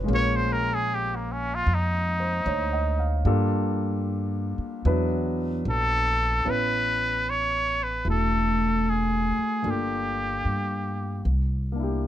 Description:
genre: jazz ballad.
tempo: 75 BPM.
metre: 4/4.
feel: swing 66% on 8ths.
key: A major from 6.4 s.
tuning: A4 = 443 Hz.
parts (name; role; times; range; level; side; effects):
warm concert grand piano; accompaniment; 0.0-12.1 s; Gb3 to F5; -28 LUFS; left 1 dB; none.
upright bass; bass; 0.0-12.1 s; E1 to G2; -27 LUFS; equal; none.
trumpet with straight mute; melody; 0.1-11.3 s; Bb3 to C#5; -26 LUFS; equal; none.
room: light reverb.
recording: none.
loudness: -23 LUFS.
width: side -12 dB against mid.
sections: 0.0-6.4 A section; 6.4-12.1 B section.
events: muted trumpet solo 0.0-6.4.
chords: 0.1 Bbm7; 3.3 Gm9; 4.8 E5; 6.4 Amaj9; 9.6 Gm7; 11.2 C9.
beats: | 0.08 0.87 1.67 2.46 | 3.25 4.05 4.85 5.65 | 6.45 7.25 8.05 8.84 | 9.64 10.44 11.23 12.03.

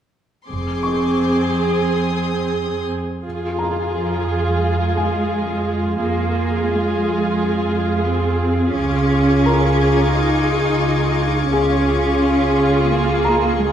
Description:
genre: cinematic.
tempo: 87 BPM.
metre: 4/4.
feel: straight.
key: F minor.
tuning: A4 = 440 Hz.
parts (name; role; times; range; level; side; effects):
rich studio viola section; accompaniment; 0.5-13.7 s; C4 to Ab4; -20 LUFS; equal; none.
rich studio cello section; bass; 0.5-13.7 s; F2 to Eb4; -22 LUFS; right 2 dB; none.
rich studio double bass section; bass; 0.5-13.7 s; F1 to F2; -22 LUFS; right 1 dB; none.
warm studio violin section; texture; 0.5-2.9, 8.8-13.7 s; C6 to Ab6; -28 LUFS; left 7 dB; none.
felt-muted upright piano; texture; 0.8-13.7 s; Ab4 to Db6; -27 LUFS; left 2 dB; none.
room: moderate scoring stage reverb, RT60 1.6 s.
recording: dark, warm production.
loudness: -16 LUFS.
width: side -9 dB against mid.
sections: 0.5-3.2 A section; 3.2-13.7 B section.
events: none.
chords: 0.5 Fm; 8.8 Db.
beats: | 0.48 1.17 1.86 2.55 | 3.24 3.93 4.62 5.31 | 6.00 6.69 7.38 8.07 | 8.76 9.45 10.14 10.83 | 11.52 12.21 12.90 13.59.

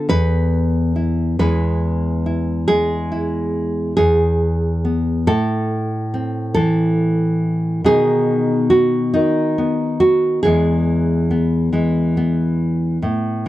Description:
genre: folk, solo fingerstyle acoustic guitar.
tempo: 46 BPM (dotted quarters).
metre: 6/8.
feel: straight.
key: unclear.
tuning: A4 = 441 Hz.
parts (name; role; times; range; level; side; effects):
nylon-string guitar; solo; 0.0-13.5 s; E2 to B4; -15 LUFS; equal; none.
room: light reverb.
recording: dry, close 1970s-style studio recording.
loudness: -15 LUFS.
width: side -15 dB against mid.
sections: 0.0-13.0 A section.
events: none.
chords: 0.1 N.C.; 1.4 E; 5.3 Am; 7.9 B; 10.4 E.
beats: | 0.09 1.39 | 2.68 3.98 | 5.27 6.56 | 7.86 9.15 | 10.44 11.73 | 13.03.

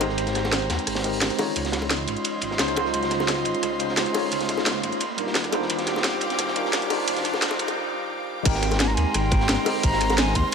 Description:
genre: liquid drum and bass.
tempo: 174 BPM.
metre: 4/4.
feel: straight.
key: Ab major.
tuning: A4 = 442 Hz.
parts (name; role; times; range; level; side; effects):
tine electric piano; accompaniment; 0.0-10.5 s; G3 to Db5; -27 LUFS; equal; medium stereo tremolo, low-pass filter, digital delay.
airy breathy pad; sustained chords; 0.0-10.5 s; F4 to D6; -30 LUFS; right 1 dB; chorus, sidechain pumping.
dark detuned saw bass; bass; 0.0-10.4 s; Eb1 to Eb2; -30 LUFS; equal; none.
crunchy breakbeat drum kit; drums; 0.0-10.5 s; hi-hat, ride cymbal, snare drum; -30 LUFS; equal; high-pass filter on cymbals, high-pass filter on hats, high-pass filter on snare, high-pass filter on room.
drum and bass drum kit; drums; 0.0-10.5 s; crash cymbal, hi-hat, rim click, snare drum; -27 LUFS; equal; high-pass filter on hats, high-pass filter on snare, high-pass filter on cymbals.
bongos; percussion; 0.0-10.2 s; none; -30 LUFS; left 6 dB; none.
riser; sound effects; 0.9-7.8 s; none; -35 LUFS; equal; none.
breathy mellow silver concert flute; melody; 8.5-10.5 s; G5 to C6; -27 LUFS; right 1 dB; ping-pong delay.
electronic kick drum; drums; 8.5-10.4 s; none; -22 LUFS; equal; none.
room: moderate plate reverb, RT60 1.9 s, small room reverb.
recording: high-pass filter.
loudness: -21 LUFS.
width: side -6 dB against mid.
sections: 0.0-8.5 A section; 8.5-10.5 B section.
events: build-up 0.0-8.5; filter sweep on tine electric piano 0.0-8.5; riser 0.9-7.8; break 7.8-8.5; drop 8.5-10.5.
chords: 0.0 Abmaj9; 1.6 Dbmaj9; 5.0 Ebmaj9; 8.5 Abmaj9.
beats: | 0.18 0.53 0.87 1.21 | 1.56 1.90 2.25 2.59 | 2.94 3.28 3.63 3.97 | 4.32 4.66 5.01 5.35 | 5.70 6.04 6.39 6.73 | 7.08 7.42 7.77 8.11 | 8.46 8.80 9.14 9.49 | 9.84 10.18 10.53.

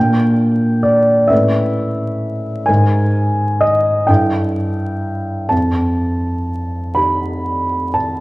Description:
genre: classical, impressionist solo piano.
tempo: 40-45 BPM (dotted quarters).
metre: 6/8.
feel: rubato.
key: unclear.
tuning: A4 = 436 Hz.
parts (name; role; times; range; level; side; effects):
clear grand piano; solo; 0.0-8.2 s; F2 to B5; -14 LUFS; equal; none.
room: wet recital hall reverb, RT60 1.9 s.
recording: worn, warbling old tape, cassette tape, vinyl crackle, warbly pitch drift.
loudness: -14 LUFS.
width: side -20 dB against mid.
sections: 0.0-8.2 A section.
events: none.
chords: 0.0 Bb6; 1.3 Aadd9; 2.7 Absus2; 4.1 Gsus2; 5.5 F9.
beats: 1.31 | 2.68 4.09 | 5.52 6.98.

